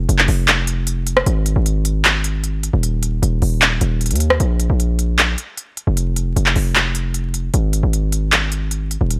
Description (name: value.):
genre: hip hop, trap.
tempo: 153 BPM.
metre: 4/4.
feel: half-time.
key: unclear.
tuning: A4 = 440 Hz.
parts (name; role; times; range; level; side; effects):
distorted 808-style bass; bass; 0.0-9.2 s; Eb1 to Eb2; -20 LUFS; equal; distortion.
trap drum kit; drums; 0.1-9.2 s; handclaps, hi-hat, rim click; -20 LUFS; equal; overdrive.
room: little or no reverb.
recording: vinyl crackle.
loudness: -18 LUFS.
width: mono.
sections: 0.0-4.4 A section; 4.4-9.2 B section.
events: none.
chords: none.